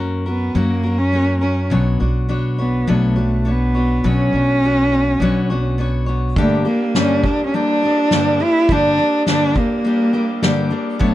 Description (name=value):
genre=acoustic folk duo or small band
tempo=103 BPM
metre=4/4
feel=straight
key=unclear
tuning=A4 = 440 Hz
part: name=picked steel-string acoustic guitar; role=accompaniment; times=0.0-11.1 s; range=G2 to C#5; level=-20 LUFS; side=left 2 dB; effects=none
part: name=upright bass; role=bass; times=0.0-6.3 s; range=B1 to F#2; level=-19 LUFS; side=right 1 dB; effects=none
part: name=dark cello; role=melody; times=0.3-11.1 s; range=A3 to E4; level=-18 LUFS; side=right 1 dB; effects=none
part: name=soft-mallet drum kit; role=drums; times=6.4-11.1 s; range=kick drum, ride cymbal, snare drum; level=-23 LUFS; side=right 1 dB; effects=none
room=little or no reverb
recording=none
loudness=-15 LUFS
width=side -14 dB against mid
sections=0.0-6.4 A section; 6.4-11.1 B section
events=none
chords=0.0 F#; 1.7 Bmadd9; 6.4 Gm